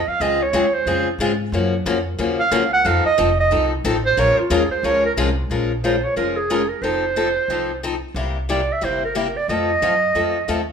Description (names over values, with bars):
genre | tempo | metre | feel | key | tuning
acoustic string swing (jazz manouche) | 181 BPM | 4/4 | swing 61% on 8ths | Bb minor | A4 = 440 Hz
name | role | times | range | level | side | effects
breathy clarinet | melody | 0.0-10.7 s | F4 to Gb5 | -19 LUFS | right 4 dB | none
upright bass | bass | 0.0-10.7 s | F1 to Ab2 | -26 LUFS | equal | none
picked steel-string acoustic guitar | accompaniment | 0.2-10.6 s | C3 to Bb4 | -21 LUFS | left 4 dB | none
room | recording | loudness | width
moderate large studio reverb, RT60 0.9 s | band playing live in one room | -17 LUFS | side -6 dB against mid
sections
0.0-5.5 A section; 5.5-10.7 B section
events
clarinet solo 0.0-5.5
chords
0.2 Dbmaj7; 1.5 Gbmaj7; 2.9 F7; 4.2 Bbm7; 6.8 F7; 8.2 C7; 9.5 F